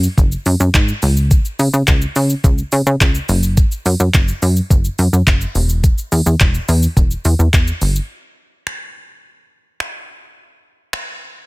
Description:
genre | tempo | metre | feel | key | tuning
dance-pop | 106 BPM | 4/4 | straight | unclear | A4 = 441 Hz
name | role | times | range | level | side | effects
plucky analog bass | bass | 0.0-8.0 s | E1 to C#3 | -15 LUFS | equal | sidechain pumping
smooth R&B drum kit | drums | 0.0-11.1 s | finger snaps, handclaps, hi-hat, kick drum, shaker | -16 LUFS | equal | soft clipping on snare
room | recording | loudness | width
little or no reverb | dense, heavily limited modern master | -12 LUFS | side -23 dB against mid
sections
0.0-8.1 A section; 8.1-11.5 B section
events
drop 0.0-8.1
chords
none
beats
0.18 0.74 | 1.31 1.88 2.44 3.01 | 3.57 4.14 4.71 5.27 | 5.84 6.40 6.97 7.54 | 8.10 8.67 9.23 9.80 | 10.37 10.93

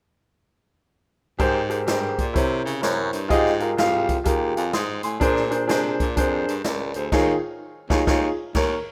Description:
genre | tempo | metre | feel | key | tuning
uptempo gospel | 126 BPM | 4/4 | swing 64% on 8ths | Ab major | A4 = 440 Hz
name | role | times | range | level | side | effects
warm upright piano | accompaniment | 1.4-8.8 s | Ab2 to Eb6 | -24 LUFS | equal | none
breathy baritone saxophone | bass | 1.4-8.8 s | C2 to Db3 | -30 LUFS | equal | none
swinging big-band drum kit | drums | 1.4-8.7 s | crash cymbal, hi-hat, kick drum, snare drum | -28 LUFS | equal | none
room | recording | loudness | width
moderate plate reverb, RT60 1.8 s, studio reverb | rough home demo mix | -22 LUFS | mono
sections
1.4-8.9 A section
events
band accent 7.1-8.9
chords
1.4 Abmaj9; 2.3 C7b9; 3.3 Fm9; 5.2 Bb9; 7.1 Eb9sus4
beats
| 1.40 1.87 2.35 2.83 | 3.30 3.78 4.26 4.74 | 5.21 5.69 6.17 6.64 | 7.12 7.60 8.08 8.55

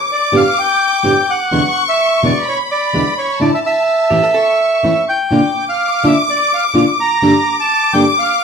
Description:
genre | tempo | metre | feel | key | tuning
tango | 126 BPM | 4/4 | rubato | unclear | A4 = 440 Hz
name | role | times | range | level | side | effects
warm studio violin section | second line | 0.0-8.4 s | A5 to D6 | -17 LUFS | left 2 dB | analog delay
bandoneon | melody | 0.1-8.4 s | C#5 to Bb5 | -15 LUFS | right 2 dB | none
nylon-string guitar | accompaniment | 0.3-8.0 s | E2 to A4 | -15 LUFS | equal | none
archtop guitar, miked and amplified | second line | 4.1-4.9 s | G4 to A4 | -23 LUFS | right 4 dB | none
room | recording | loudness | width
wet large studio reverb, RT60 0.7 s | none | -11 LUFS | side -6 dB against mid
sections
0.0-8.4 A section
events
none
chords
0.0 Gadd9; 1.5 E7; 3.4 Asus4; 4.4 A; 5.3 Bb; 7.2 Gmadd9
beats
0.09 0.56 1.04 | 1.51 1.98 2.45 2.92 | 3.40 3.87 4.35 4.83 | 5.31 5.79 6.28 6.75 | 7.23 7.71 8.18

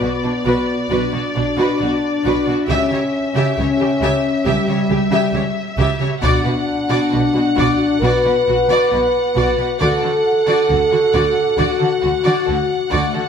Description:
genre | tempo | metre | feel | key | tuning
cinematic, epic orchestral film score | 67 BPM | 4/4 | straight | B minor | A4 = 439 Hz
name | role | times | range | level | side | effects
warm symphonic violin section | melody | 0.0-13.3 s | D5 to F#5 | -24 LUFS | left 3 dB | none
clear symphonic violin section | second line | 0.0-13.2 s | D4 to E5 | -24 LUFS | left 2 dB | none
warm symphonic viola section | accompaniment | 0.0-13.2 s | F#4 to G4 | -24 LUFS | right 2 dB | none
mellow French horn section | sustained chords | 0.0-13.2 s | G3 to B4 | -18 LUFS | left 1 dB | none
warm studio double bass section | bass | 0.0-13.0 s | B1 to D2 | -25 LUFS | right 3 dB | none
warm symphonic cello section | bass | 0.0-13.2 s | B2 to D3 | -24 LUFS | right 3 dB | none
taiko ensemble | drums | 6.2-8.0 s | none | -24 LUFS | left 1 dB | none
room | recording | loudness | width
wet scoring stage reverb, RT60 2.0 s | none | -14 LUFS | side -7 dB against mid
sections
0.0-13.3 A section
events
none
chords
0.0 Bm; 2.7 C#dim; 6.2 Bm; 9.8 D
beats
0.01 0.90 1.79 | 2.67 3.56 4.45 5.34 | 6.23 7.12 8.03 8.92 | 9.81 10.70 11.58 12.47

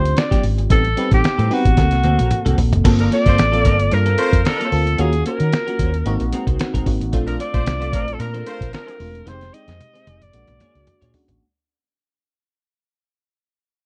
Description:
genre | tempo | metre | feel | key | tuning
polished 1980s jazz-funk pop | 112 BPM | 4/4 | swing 54% on 16ths | G minor | A4 = 440 Hz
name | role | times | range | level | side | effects
breathy alto saxophone | melody | 0.0-11.1 s | F#4 to Eb5 | -24 LUFS | equal | none
FM electric piano | accompaniment | 0.0-11.4 s | Ab3 to A4 | -27 LUFS | equal | phaser, lush chorus
clean electric guitar | riff | 0.0-11.3 s | F3 to D5 | -29 LUFS | equal | analog chorus
vintage muted fingered electric bass | bass | 0.0-11.4 s | E1 to Eb3 | -22 LUFS | equal | none
lo-fi sampler-style drum kit | drums | 0.1-11.4 s | crash cymbal, hi-hat, kick drum, snare drum, toms | -22 LUFS | equal | none
mellow horn section | second line | 3.0-8.9 s | F3 to D5 | -29 LUFS | equal | none
room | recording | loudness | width
little or no reverb | dry, close 1970s-style studio recording | -18 LUFS | mono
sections
0.0-2.9 A section; 2.9-11.4 B section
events
drum fill 1.8-2.9, 9.3-11.4; fade-out 2.9-11.4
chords
0.0 Bb6; 0.7 Am7b5; 1.8 D7b13; 2.9 Gm11; 5.0 Ebm7; 6.1 Ab9; 7.1 Bbmaj9; 9.3 Fm7; 10.3 Bb7alt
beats
0.17 | 0.70 1.24 1.78 2.31 | 2.85 3.38 3.92 4.46 | 4.99 5.53 6.06 6.59 | 7.13 7.66 8.20 8.73 | 9.27 9.80 10.34 10.87

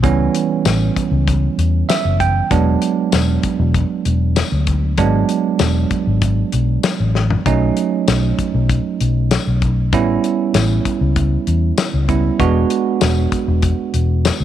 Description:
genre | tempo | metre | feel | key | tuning
straight-eighth soul blues | 97 BPM | 4/4 | straight | E mixolydian | A4 = 439 Hz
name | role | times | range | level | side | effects
bell-like tine electric piano | accompaniment | 0.0-14.4 s | E3 to G5 | -18 LUFS | right 8 dB | auto-pan
vintage muted fingered electric bass | bass | 0.0-14.4 s | E1 to E2 | -16 LUFS | left 1 dB | none
warm soul drum kit | drums | 0.0-14.4 s | hi-hat, kick drum, snare drum, tambourine, toms | -20 LUFS | left 5 dB | none
room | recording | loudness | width
light reverb, small room reverb | 1960s-style stereo | -14 LUFS | side -11 dB against mid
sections
0.0-14.4 A section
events
tine electric piano fill 1.6-2.5; drum fill 7.2-7.5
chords
0.0 A7 (rootless); 2.5 E7; 7.5 B7; 9.9 A7; 12.4 E7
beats
| 0.04 0.66 1.28 1.90 | 2.51 3.13 3.75 4.37 | 4.99 5.61 6.22 6.84 | 7.46 8.08 8.70 9.31 | 9.93 10.55 11.17 11.78 | 12.40 13.02 13.64 14.26

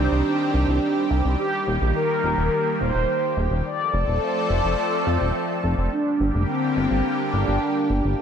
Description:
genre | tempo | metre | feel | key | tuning
synthwave | 106 BPM | 4/4 | straight | G minor | A4 = 438 Hz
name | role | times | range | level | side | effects
mellow synth brass | melody | 0.0-8.2 s | C4 to D5 | -24 LUFS | equal | chorus, ping-pong delay
lush unison pad | sustained chords | 0.0-8.2 s | D3 to A4 | -25 LUFS | equal | chorus, phaser
chorused synth bass | bass | 0.0-8.2 s | Eb1 to F2 | -22 LUFS | equal | none
room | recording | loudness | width
moderate lush hall reverb, RT60 1.9 s, digital ambience | bright 1980s-style digital production | -20 LUFS | side -8 dB against mid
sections
0.0-8.2 A section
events
none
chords
0.0 Cm; 1.4 Eb; 3.7 F; 5.9 Gm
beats
0.26 0.82 | 1.39 1.96 2.52 3.09 | 3.65 4.22 4.79 5.35 | 5.92 6.49 7.05 7.62 | 8.18

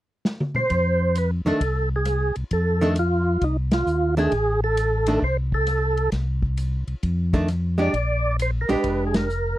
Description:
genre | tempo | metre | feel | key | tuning
soul jazz organ trio | 133 BPM | 4/4 | swing 66% on 8ths | F mixolydian | A4 = 439 Hz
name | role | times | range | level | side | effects
vintage drum kit | drums | 0.2-9.4 s | hi-hat, kick drum, ride cymbal, rim click, snare drum, toms | -26 LUFS | equal | none
percussive tonewheel organ | melody | 0.6-9.6 s | Eb4 to D5 | -23 LUFS | right 1 dB | slow rotary speaker, overdrive, chorus vibrato
mellow tonewheel organ | bass | 0.7-9.6 s | F1 to F2 | -23 LUFS | equal | chorus vibrato, slow rotary speaker
archtop guitar, miked and amplified | accompaniment | 1.5-9.3 s | Eb3 to G4 | -22 LUFS | right 1 dB | none
room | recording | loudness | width
little or no reverb | dry, close 1970s-style studio recording | -20 LUFS | side -15 dB against mid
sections
0.7-9.6 A section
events
drum fill 0.3-0.7; band accent 3.6, 9.1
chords
0.0 N.C.; 0.7 F; 6.1 N.C.; 7.0 F13; 7.9 Bb6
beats
0.25 | 0.71 1.16 1.61 2.06 | 2.51 2.97 3.42 3.87 | 4.32 4.78 5.23 5.68 | 6.13 6.58 7.04 7.49 | 7.94 8.39 8.85 9.30

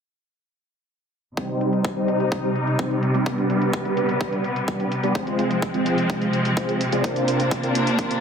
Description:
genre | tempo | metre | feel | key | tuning
EDM, festival progressive house | 127 BPM | 4/4 | straight | C minor | A4 = 436 Hz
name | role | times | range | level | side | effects
clear studio string section | sustained chords | 1.4-8.2 s | C3 to Eb4 | -24 LUFS | equal | sidechain pumping, low-pass filter
supersaw chords | riff | 1.4-8.2 s | G3 to D5 | -23 LUFS | equal | phaser, sidechain pumping, low-pass filter, dub echo
electronic hi-hat | drums | 1.4-8.2 s | none | -36 LUFS | right 1 dB | overdrive, low-pass filter on hats, studio ambience
electronic kick drum | drums | 1.4-8.1 s | none | -28 LUFS | equal | overdrive, high-pass filter on kick, studio ambience
room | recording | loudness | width
moderate digital room reverb, RT60 1.2 s, digital ambience | dense, heavily limited modern master | -20 LUFS | side -7 dB against mid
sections
1.4-8.2 A section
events
filter sweep on drum 1.4-8.2; filter sweep on string section 1.4-8.2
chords
1.4 Cm; 3.3 G/C; 5.2 Fm/C; 7.0 Bbadd9/C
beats
| 1.37 1.85 2.32 2.79 | 3.26 3.74 4.21 4.68 | 5.15 5.63 6.10 6.57 | 7.04 7.52 7.99

